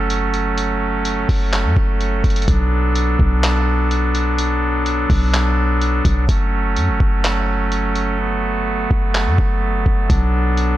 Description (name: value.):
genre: hip hop, atmospheric cloud-rap.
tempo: 126 BPM.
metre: 4/4.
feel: half-time.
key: F# minor.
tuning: A4 = 440 Hz.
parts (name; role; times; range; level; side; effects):
pipe organ, soft reed; sustained chords; 0.0-10.8 s; F#3 to A4; -20 LUFS; right 1 dB; sidechain pumping.
clean 808-style bass; bass; 0.0-10.8 s; F#1 to F#2; -19 LUFS; equal; none.
lo-fi sampler-style drum kit; drums; 0.1-10.7 s; handclaps, hi-hat, kick drum; -20 LUFS; equal; none.
room: little or no reverb.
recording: none.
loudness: -15 LUFS.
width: side -14 dB against mid.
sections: 0.0-10.8 A section.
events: hi-hats muted 8.2-10.1.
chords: 0.0 F#m; 2.5 Bm7; 6.3 F#m; 10.1 Bm7.